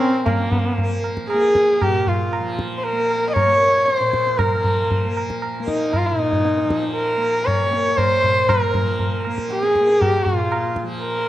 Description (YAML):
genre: indian classical, Hindustani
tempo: 117 BPM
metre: 4/4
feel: straight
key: Bb raga bhimpalasi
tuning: A4 = 438 Hz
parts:
  - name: warm sarangi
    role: melody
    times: 0.0-11.3 s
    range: Bb3 to Eb5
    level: -18 LUFS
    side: equal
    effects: none
  - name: tanpura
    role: drone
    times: 0.0-11.3 s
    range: Bb2 to Bb3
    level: -27 LUFS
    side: equal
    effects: none
  - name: tabla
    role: percussion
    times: 0.0-11.3 s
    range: none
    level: -23 LUFS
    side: right 1 dB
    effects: none
room: moderate scoring stage reverb, RT60 1.5 s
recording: dark, warm production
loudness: -17 LUFS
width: side -14 dB against mid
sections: 0.3-11.3 A section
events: speeding up 0.0-11.3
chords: none